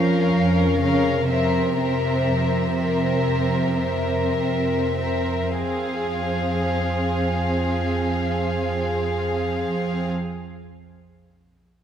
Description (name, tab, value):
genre	classical, slow romantic movement for string orchestra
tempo	44-69 BPM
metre	4/4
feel	rubato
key	F minor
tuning	A4 = 441 Hz
part	warm chamber violin section	melody	0.0-10.1 s	E5 to F5	-29 LUFS	left 4 dB	none
part	warm chamber violin section	second line	0.0-10.1 s	Ab4 to Bb4	-26 LUFS	left 2 dB	none
part	warm chamber viola section	accompaniment	0.0-10.1 s	C4 to Db4	-26 LUFS	right 1 dB	none
part	dark chamber cello section	bass	0.0-10.1 s	C3 to F3	-26 LUFS	right 1 dB	none
part	dark chamber double bass section	bass	0.0-10.1 s	F2	-27 LUFS	right 2 dB	none
room	wet scoring stage reverb, RT60 2.0 s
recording	faint mains hum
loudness	-20 LUFS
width	side -9 dB against mid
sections	0.0-5.6 A section; 5.6-10.0 B section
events	slowing down 0.0-5.6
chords	0.0 Bbm/F; 1.3 C7/F